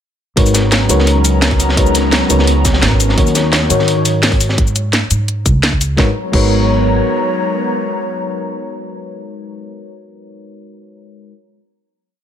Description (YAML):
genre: liquid drum and bass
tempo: 171 BPM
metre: 4/4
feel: straight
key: G# minor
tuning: A4 = 440 Hz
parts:
  - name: mellow FM electric piano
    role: accompaniment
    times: 0.4-11.3 s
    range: D#3 to C#5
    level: -18 LUFS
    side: left 2 dB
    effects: chorus, digital delay
  - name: airy breathy pad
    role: sustained chords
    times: 0.4-9.6 s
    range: F#3 to A#5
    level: -20 LUFS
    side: equal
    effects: chorus
  - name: upright bass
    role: bass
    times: 0.4-7.0 s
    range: G#1 to G#2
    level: -15 LUFS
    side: right 1 dB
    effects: none
  - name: crunchy breakbeat drum kit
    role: drums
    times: 0.4-4.6 s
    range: hi-hat, snare drum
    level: -20 LUFS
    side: equal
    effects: high-pass filter on hats, high-pass filter on snare, high-pass filter on room
  - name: electronic kick drum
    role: drums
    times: 0.4-6.4 s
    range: none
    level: -15 LUFS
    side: equal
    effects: none
  - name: garage drum kit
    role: drums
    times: 0.4-6.4 s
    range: cabasa, crash cymbal, hi-hat, snare drum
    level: -16 LUFS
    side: equal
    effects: none
room: light reverb, small room ambience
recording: none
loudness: -11 LUFS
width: side -9 dB against mid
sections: 0.4-6.0 drop; 6.0-8.8 final chord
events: drop 0.4-6.0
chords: 0.4 G#m11; 3.2 D#m7; 6.0 G#m11